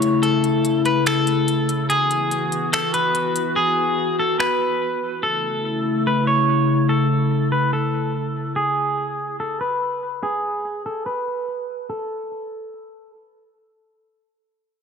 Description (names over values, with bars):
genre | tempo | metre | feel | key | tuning
hip hop, atmospheric cloud-rap | 144 BPM | 4/4 | half-time | A major | A4 = 440 Hz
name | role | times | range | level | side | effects
electric guitar at the edge of break-up | melody | 0.0-13.1 s | G#4 to C#5 | -22 LUFS | equal | low-pass filter, ping-pong delay
warbly tape-like pad | sustained chords | 0.0-8.5 s | C#3 to F#4 | -21 LUFS | left 2 dB | chorus, built-in reverb, low-pass filter
trap drum kit | drums | 0.0-4.5 s | finger snaps, hi-hat | -26 LUFS | equal | none
downlifter | sound effects | 0.0-1.9 s | none | -42 LUFS | equal | none
room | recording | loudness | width
moderate lush hall reverb, RT60 2.2 s | none | -19 LUFS | side -6 dB against mid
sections
0.0-11.9 A section; 11.9-14.8 B section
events
break 0.0-5.2; filter sweep 0.0-11.9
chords
0.0 A; 1.9 Eadd9; 5.2 A; 8.6 N.C.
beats
| 0.23 0.65 1.06 1.48 | 1.90 2.31 2.73 3.15 | 3.56 3.98 4.40 4.81 | 5.23 5.65 6.06 6.48 | 6.90 7.31 7.73 8.15 | 8.56 8.98 9.40 9.81 | 10.23 10.65 11.06 11.48 | 11.90 12.31 12.73